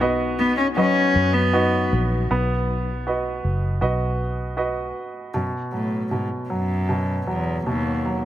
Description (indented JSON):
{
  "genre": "pop ballad",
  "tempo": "78 BPM",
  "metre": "4/4",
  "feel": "straight",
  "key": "B major",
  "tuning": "A4 = 441 Hz",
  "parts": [
    { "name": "bright concert grand piano", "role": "accompaniment", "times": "0.0-8.2 s", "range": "B2 to D#5", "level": "-25 LUFS", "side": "right 2 dB", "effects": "none" },
    { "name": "nylon-string guitar", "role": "arpeggios", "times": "0.0-2.9 s", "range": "F#3 to B4", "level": "-26 LUFS", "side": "left 5 dB", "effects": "digital delay" },
    { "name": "vintage muted fingered electric bass", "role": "bass", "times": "0.0-4.9 s", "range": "F#1 to F#2", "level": "-24 LUFS", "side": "equal", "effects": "none" },
    { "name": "warm cello", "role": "melody", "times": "0.4-8.2 s", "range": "D#2 to C#4", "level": "-23 LUFS", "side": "left 1 dB", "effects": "none" }
  ],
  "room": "light reverb, small room ambience",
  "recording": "none",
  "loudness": "-20 LUFS",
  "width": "side -12 dB against mid",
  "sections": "0.0-2.3 A section; 2.3-5.3 B section; 5.3-8.2 C section",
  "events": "none",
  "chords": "0.0 B; 5.3 B5",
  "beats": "0.01 0.77 1.54 | 2.31 3.07 3.82 4.57 | 5.34 6.11 6.89 7.66"
}